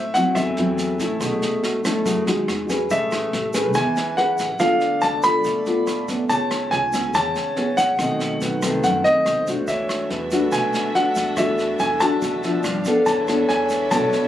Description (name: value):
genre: bossa nova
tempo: 142 BPM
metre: 4/4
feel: straight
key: A major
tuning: A4 = 440 Hz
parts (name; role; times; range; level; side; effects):
- warm concert grand piano; melody; 0.0-14.3 s; D#5 to B5; -22 LUFS; equal; none
- bright reedy wooden-headed alto flute; second line; 0.0-14.3 s; F#4 to E5; -30 LUFS; equal; none
- nylon-string guitar; accompaniment; 0.0-14.3 s; F#2 to B4; -22 LUFS; left 1 dB; none
- jazz brush drum kit; drums; 0.1-14.2 s; kick drum, rim click, snare drum; -29 LUFS; equal; none
- tube shaker; percussion; 0.1-14.3 s; none; -39 LUFS; right 3 dB; none
- upright bass; bass; 0.4-14.1 s; A1 to G2; -31 LUFS; equal; none
- warm studio violin section; sustained chords; 9.7-14.3 s; D4 to F5; -31 LUFS; left 2 dB; none
room: light reverb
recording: recorded on a phone in the room, club ambience, compression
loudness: -18 LUFS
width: side -11 dB against mid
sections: 0.0-2.9 A section; 2.9-14.3 B section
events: none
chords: 0.0 Am6; 1.2 B9sus4; 2.5 Emaj9; 2.9 Amaj9; 4.6 Dm6; 6.3 Amaj9/C#; 8.0 B7b9; 9.7 E9sus4; 12.6 Gm7; 13.1 E7sus4